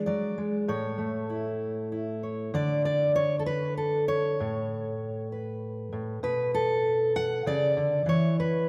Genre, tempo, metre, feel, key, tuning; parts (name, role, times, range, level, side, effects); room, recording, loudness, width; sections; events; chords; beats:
folk, solo fingerstyle acoustic guitar; 97 BPM; 3/4; straight; A major; A4 = 440 Hz
fingerpicked steel-string acoustic guitar; solo; 0.0-8.7 s; A2 to F#5; -28 LUFS; equal
wet concert hall reverb, RT60 2.3 s; -28 LUFS; mono
0.0-2.5 A section; 2.5-8.7 B section
0.0 E7 (rootless); 0.7 A; 2.5 N.C.; 4.4 Aadd9; 6.2 Bm7; 8.1 E5
0.06 | 0.68 1.29 1.92 | 2.54 3.16 3.77 | 4.39 5.01 5.62 | 6.23 6.85 7.46 | 8.08